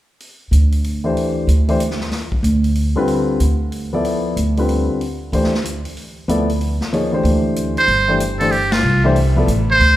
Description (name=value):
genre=modal jazz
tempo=187 BPM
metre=3/4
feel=swing 63% on 8ths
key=G mixolydian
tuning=A4 = 440 Hz
part: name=vintage drum kit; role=drums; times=0.2-9.9 s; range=hi-hat, kick drum, ride cymbal, snare drum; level=-27 LUFS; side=left 1 dB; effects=none
part: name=upright bass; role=bass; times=0.5-10.0 s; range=G1 to D2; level=-18 LUFS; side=equal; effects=none
part: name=warm grand piano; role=accompaniment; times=1.0-9.5 s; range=D3 to D5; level=-19 LUFS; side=left 2 dB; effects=none
part: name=trumpet with metal mute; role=melody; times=7.8-10.0 s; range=F4 to C5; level=-15 LUFS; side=right 2 dB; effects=none
room=moderate recital hall reverb, RT60 1.7 s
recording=recorded in a church or concert hall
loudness=-15 LUFS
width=side -14 dB against mid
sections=0.2-7.9 A section; 7.9-10.0 B section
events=band accent 8.7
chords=0.2 G7sus4; 4.0 Amadd9; 7.9 Gsus4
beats=| 0.19 0.51 0.83 | 1.16 1.48 1.80 | 2.12 2.44 2.76 | 3.08 3.40 3.72 | 4.04 4.36 4.68 | 5.00 5.32 5.64 | 5.96 6.28 6.60 | 6.92 7.24 7.56 | 7.88 8.20 8.52 | 8.84 9.16 9.48 | 9.80